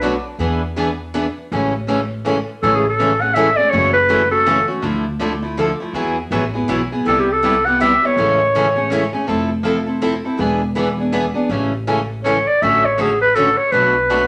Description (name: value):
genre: acoustic string swing (jazz manouche)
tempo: 162 BPM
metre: 3/4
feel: swing 61% on 8ths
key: A major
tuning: A4 = 440 Hz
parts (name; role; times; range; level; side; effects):
- growling clarinet; melody; 0.0-0.2, 2.6-4.7, 7.1-9.2, 12.2-14.3 s; G4 to F#5; -17 LUFS; equal; none
- picked steel-string acoustic guitar; accompaniment; 0.0-14.2 s; B2 to A4; -24 LUFS; equal; none
- picked steel-string acoustic guitar; accompaniment; 0.0-14.2 s; B2 to B4; -25 LUFS; equal; none
- upright bass; bass; 0.0-14.3 s; E1 to E2; -27 LUFS; equal; none
room: wet studio reverb, RT60 0.8 s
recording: none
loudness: -17 LUFS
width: mono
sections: 0.0-2.6 A section; 2.6-11.5 B section; 11.5-14.3 C section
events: clarinet solo 11.5-14.3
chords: 0.4 E7; 1.5 Amaj7; 3.7 F#m7; 4.8 Dmadd9; 5.9 Eadd9; 7.1 Cmaj7; 8.2 Amaj7; 9.3 Fmaj7; 10.4 E7; 11.5 Amaj7; 12.6 Dmaj7/A; 13.7 Bm7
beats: 0.03 | 0.40 0.77 1.14 | 1.51 1.88 2.25 | 2.62 2.99 3.36 | 3.73 4.10 4.47 | 4.84 5.21 5.58 | 5.95 6.32 6.69 | 7.06 7.43 7.80 | 8.17 8.54 8.91 | 9.28 9.65 10.02 | 10.39 10.77 11.13 | 11.51 11.88 12.25 | 12.62 12.99 13.36 | 13.73 14.10